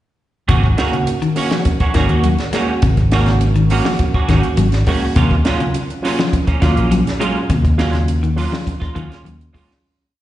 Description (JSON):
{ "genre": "afrobeat", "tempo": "103 BPM", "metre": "4/4", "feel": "straight", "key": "unclear", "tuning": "A4 = 441 Hz", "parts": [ { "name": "clean electric guitar", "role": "arpeggios", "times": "0.5-9.7 s", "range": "C3 to Ab3", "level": "-21 LUFS", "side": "left 4 dB", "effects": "slapback echo" }, { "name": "semi-hollow electric guitar", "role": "stabs", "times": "0.5-9.7 s", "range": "Eb3 to Gb4", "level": "-22 LUFS", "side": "right 4 dB", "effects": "ensemble chorus, slapback echo" }, { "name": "fingered electric bass", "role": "bass", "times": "0.5-9.5 s", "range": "Ab1 to Eb2", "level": "-15 LUFS", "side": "equal", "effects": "none" }, { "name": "compact cocktail drum kit", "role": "drums", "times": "0.5-9.8 s", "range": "hi-hat, kick drum, snare drum", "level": "-19 LUFS", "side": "equal", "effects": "none" }, { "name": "overdriven reed electric piano", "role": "accompaniment", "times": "0.8-9.8 s", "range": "Gb3 to Gb4", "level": "-23 LUFS", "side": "right 2 dB", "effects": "slapback echo" } ], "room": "small room ambience", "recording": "live gig heard through the venue's PA, recital hall reverb, nothing above 10.9 kHz", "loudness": "-14 LUFS", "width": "side -14 dB against mid", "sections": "0.5-9.8 groove", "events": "fade-out 7.5-9.8", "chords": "0.5 Ab9sus4; 5.2 Ebm9", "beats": "| 0.49 1.07 1.66 2.24 | 2.83 3.41 4.00 4.58 | 5.16 5.75 6.33 6.91 | 7.49 8.08 8.66 9.24" }